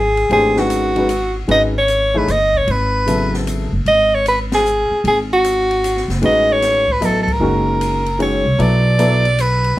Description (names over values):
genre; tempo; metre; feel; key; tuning
modal jazz; 152 BPM; 3/4; swing 66% on 8ths; G# phrygian; A4 = 440 Hz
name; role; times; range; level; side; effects
breathy soprano saxophone; melody; 0.0-9.8 s; F#4 to D#5; -15 LUFS; equal; none
upright bass; bass; 0.0-9.7 s; F#1 to B#1; -20 LUFS; equal; none
open jazz drum kit; drums; 0.2-9.7 s; hi-hat, kick drum, ride cymbal, snare drum; -29 LUFS; left 2 dB; none
warm baby grand piano; accompaniment; 0.3-3.7, 6.2-9.2 s; C#3 to D#5; -19 LUFS; left 1 dB; none
room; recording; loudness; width
moderate studio ambience, RT60 0.5 s; vinyl crackle; -13 LUFS; side -16 dB against mid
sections
0.0-8.6 A section; 8.6-9.8 B section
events
band accent 4.5, 7.2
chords
0.0 G#m7; 3.9 Aadd9/G#; 7.4 F#; 8.6 Bm7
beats
| 0.30 0.70 1.09 | 1.49 1.88 2.28 | 2.67 3.07 3.46 | 3.86 4.25 4.65 | 5.04 5.44 5.83 | 6.23 6.62 7.02 | 7.41 7.81 8.20 | 8.60 8.99 9.38 | 9.78